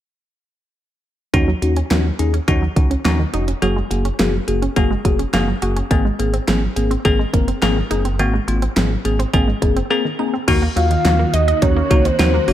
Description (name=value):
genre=synth-pop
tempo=105 BPM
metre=4/4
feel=straight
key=Eb dorian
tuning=A4 = 442 Hz
part: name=bell-like tine electric piano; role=accompaniment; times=1.3-12.5 s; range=Bb3 to Bb4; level=-21 LUFS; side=left 3 dB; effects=phaser
part: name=wide unison pluck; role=arpeggios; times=1.3-12.5 s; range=Eb3 to Eb5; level=-26 LUFS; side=right 3 dB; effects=slapback echo
part: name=round analog bass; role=bass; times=1.3-12.5 s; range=F1 to Eb2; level=-20 LUFS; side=equal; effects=none
part: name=pop drum kit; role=drums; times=1.3-12.5 s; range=crash cymbal, hi-hat, kick drum, snare drum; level=-20 LUFS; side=equal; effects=gated reverb
part: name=ensemble organ-string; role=sustained chords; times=10.5-12.5 s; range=Db3 to Gb4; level=-25 LUFS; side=right 1 dB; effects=ensemble chorus
part: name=soft octave-layered synth lead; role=melody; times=10.8-12.5 s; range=C5 to F5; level=-18 LUFS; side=equal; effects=chorus, phaser, slapback echo
room=light reverb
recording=none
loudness=-15 LUFS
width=side -12 dB against mid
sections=1.3-10.5 A section; 10.5-12.5 B section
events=break 9.9-10.5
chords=1.3 Ebm7; 3.6 Gbadd9; 5.9 Abadd9; 10.5 Ebm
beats=| 1.34 1.91 2.48 3.05 | 3.62 4.19 4.76 5.34 | 5.91 6.48 7.05 7.62 | 8.19 8.77 9.34 9.91 | 10.48 11.05 11.62 12.19